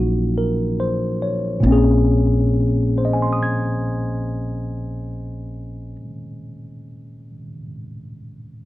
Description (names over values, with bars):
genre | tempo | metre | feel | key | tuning
jazz ballad | 46 BPM | 4/4 | swing 68% on 8ths | Bb minor | A4 = 440 Hz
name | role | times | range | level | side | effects
barky tine electric piano | accompaniment | 0.0-8.7 s | Bb2 to Ab6 | -21 LUFS | left 1 dB | none
upright bass | bass | 0.0-6.0 s | Bb1 | -23 LUFS | equal | none
room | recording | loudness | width
little or no reverb | dry, close 1970s-style studio recording | -17 LUFS | side -16 dB against mid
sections
0.0-1.6 A section; 1.6-6.9 B section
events
slowing down 0.0-1.6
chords
0.0 Ebm9; 1.6 Bbm9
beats
0.36 | 1.64 2.95 4.27 5.58